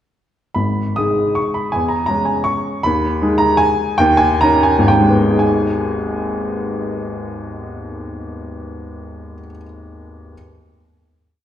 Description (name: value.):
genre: classical, piano waltz.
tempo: 114-169 BPM.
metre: 3/4.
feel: rubato.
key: G# minor.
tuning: A4 = 440 Hz.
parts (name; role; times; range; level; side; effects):
warm upright piano; solo; 0.5-10.3 s; G#1 to D#6; -15 LUFS; equal; none.
room: wet recital hall reverb, RT60 1.6 s.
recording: heard from further back in the room.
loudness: -14 LUFS.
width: side -10 dB against mid.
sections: 0.6-5.4 A section; 5.4-8.2 final chord.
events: slowing down 2.3-5.4.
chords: 0.6 G#m; 1.7 C#m/E; 2.9 G#m/D#; 4.0 D#7; 5.4 G#m.